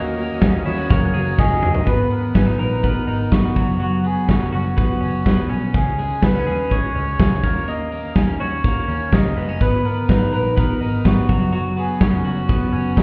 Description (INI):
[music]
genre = jangly indie pop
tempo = 124 BPM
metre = 4/4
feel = straight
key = G# minor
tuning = A4 = 440 Hz
[part]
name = melodica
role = melody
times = 0.0-13.0 s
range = F#4 to D#5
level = -27 LUFS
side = equal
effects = analog delay
[part]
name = fingerpicked steel-string acoustic guitar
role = accompaniment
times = 0.0-1.9 s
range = D#3 to A#4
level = -28 LUFS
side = equal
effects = none
[part]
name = lush unison pad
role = sustained chords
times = 0.0-1.9 s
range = G#4 to D#6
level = -39 LUFS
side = equal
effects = none
[part]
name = twelve-string electric guitar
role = arpeggios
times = 0.0-13.0 s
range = F#3 to A#4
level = -26 LUFS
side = equal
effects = spring reverb
[part]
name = vintage muted picked electric bass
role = bass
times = 0.0-13.0 s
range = E1 to D#2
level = -25 LUFS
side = equal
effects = none
[part]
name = big rock drum kit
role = drums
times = 0.2-13.0 s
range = hi-hat, kick drum, snare drum, toms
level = -22 LUFS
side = equal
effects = none
[sound]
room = moderate studio reverb, RT60 0.7 s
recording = heard muffled through a wall, stone room reverb, EQ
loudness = -19 LUFS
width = mono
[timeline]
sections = 0.0-1.9 A section; 1.9-13.0 B section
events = drum fill 1.4-1.9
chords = 0.0 D#m7; 0.9 F#add9; 1.9 G#madd9; 3.6 F#sus4; 5.7 C#5; 7.4 D#m7; 9.6 G#madd9; 11.3 F#sus4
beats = 0.42 0.90 1.38 | 1.87 2.35 2.84 3.32 | 3.80 4.29 4.77 5.26 | 5.74 6.22 6.71 7.19 | 7.67 8.16 8.64 9.12 | 9.60 10.08 10.56 11.05 | 11.53 12.01 12.49 12.97